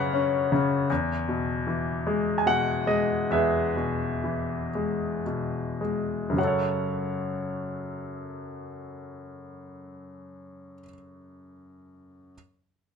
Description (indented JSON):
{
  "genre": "classical, lyrical solo piano",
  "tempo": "34-53 BPM (dotted quarters)",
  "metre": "6/8",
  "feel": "rubato",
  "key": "F# minor",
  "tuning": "A4 = 440 Hz",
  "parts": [
    { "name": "bright baby grand piano", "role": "solo", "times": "0.0-12.3 s", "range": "E2 to G#5", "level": "-26 LUFS", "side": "left 2 dB", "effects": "none" }
  ],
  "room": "light reverb",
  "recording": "minimal, uncompressed stereo recording",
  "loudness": "-25 LUFS",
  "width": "side -6 dB against mid",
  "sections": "0.0-6.4 A section; 6.4-9.8 B section",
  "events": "slowing down 0.9-6.4",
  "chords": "0.0 Bsus2/F#; 0.9 E; 6.4 F#m"
}